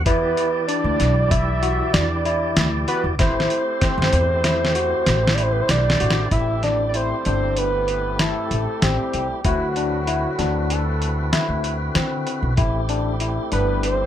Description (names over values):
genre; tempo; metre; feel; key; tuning
progressive instrumental, band music in an uneven meter; 96 BPM; 5/4; straight; A dorian; A4 = 440 Hz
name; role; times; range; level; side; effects
tonewheel organ; accompaniment; 0.0-14.1 s; D3 to D5; -27 LUFS; right 1 dB; overdrive, fast rotary speaker
upright bass; bass; 0.0-14.1 s; G1 to D3; -23 LUFS; equal; none
fat analog lead; melody; 0.1-14.1 s; F#4 to E5; -23 LUFS; right 2 dB; chorus, digital delay
barky tine electric piano; arpeggios; 0.1-14.0 s; C4 to F#4; -26 LUFS; left 6 dB; medium stereo tremolo, digital delay
dusty soul sampler-style drum kit; drums; 0.1-14.0 s; hi-hat, kick drum, snare drum; -22 LUFS; equal; none
room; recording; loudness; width
light reverb; none; -18 LUFS; side -10 dB against mid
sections
0.0-6.3 A section; 6.3-14.1 B section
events
drum fill 3.2-6.3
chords
0.1 Em7; 3.2 Am7; 9.5 D13; 12.6 Am7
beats
| 0.07 0.69 1.32 1.94 2.57 | 3.19 3.82 4.45 5.07 5.70 | 6.32 6.95 7.58 8.20 8.83 | 9.45 10.08 10.71 11.33 11.96 | 12.59 13.21 13.84